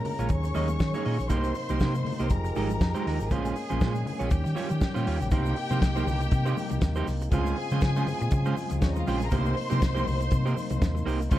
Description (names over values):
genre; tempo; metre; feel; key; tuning
disco; 120 BPM; 4/4; swing 56% on 16ths; unclear; A4 = 440 Hz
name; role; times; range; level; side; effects
clear studio string section; second line; 0.0-11.4 s; Db4 to Db6; -34 LUFS; left 1 dB; none
tonewheel organ; sustained chords; 0.0-11.4 s; C3 to Ab4; -35 LUFS; equal; stopped rotary speaker
congas; percussion; 0.0-11.4 s; none; -37 LUFS; left 6 dB; none
electric guitar at the edge of break-up; accompaniment; 0.1-11.4 s; G3 to Eb5; -32 LUFS; right 6 dB; none
warm soul drum kit; drums; 0.1-11.4 s; hi-hat, kick drum, snare drum; -28 LUFS; equal; none
hollow-body short-scale fingered electric bass; bass; 0.2-11.4 s; F1 to Eb3; -28 LUFS; equal; none
egg shaker; percussion; 0.2-11.4 s; none; -56 LUFS; left 10 dB; none
room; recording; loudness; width
small room ambience; dark, warm production; -24 LUFS; side -14 dB against mid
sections
0.0-5.3 A section; 5.3-11.4 B section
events
none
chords
0.3 Eb7sus4; 1.3 Cm7; 2.3 Fm9; 3.3 Bbm9; 4.3 Eb13; 5.3 Cm7; 7.3 Bbm9/Db; 9.3 Cm7